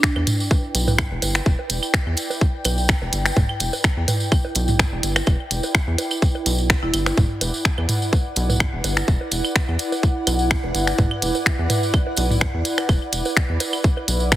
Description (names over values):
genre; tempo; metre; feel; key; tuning
minimal techno; 126 BPM; 4/4; swing 54% on 16ths; E minor; A4 = 440 Hz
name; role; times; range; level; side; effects
marimba with hard mallets; melody; 0.0-0.1, 6.8-7.0 s; D4 to E4; -27 LUFS; right 2 dB; ping-pong delay
electronic kick drum; drums; 0.0-14.4 s; none; -19 LUFS; equal; none
minimal click drum kit; drums; 0.0-14.4 s; finger snaps, hi-hat; -22 LUFS; left 1 dB; overdrive
tambourine; percussion; 0.0-14.4 s; none; -29 LUFS; right 1 dB; none
granular cloud pad; texture; 0.0-14.4 s; E4 to G5; -27 LUFS; right 1 dB; built-in reverb, sidechain pumping
rubbery square bass; bass; 0.2-14.4 s; E1 to E2; -23 LUFS; equal; sidechain pumping
electronic bongos, claves and toms; percussion; 0.2-14.4 s; none; -26 LUFS; right 2 dB; ping-pong delay
room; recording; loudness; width
light reverb, digital ambience; heavily compressed radio sound, multiband compression; -18 LUFS; side -14 dB against mid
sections
0.0-14.4 A section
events
none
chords
0.0 Em7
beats
0.03 0.51 0.98 | 1.46 1.94 2.41 2.89 | 3.37 3.84 4.32 4.79 | 5.27 5.75 6.22 6.70 | 7.17 7.65 8.13 8.60 | 9.08 9.56 10.03 10.51 | 10.98 11.46 11.94 12.41 | 12.89 13.37 13.84 14.32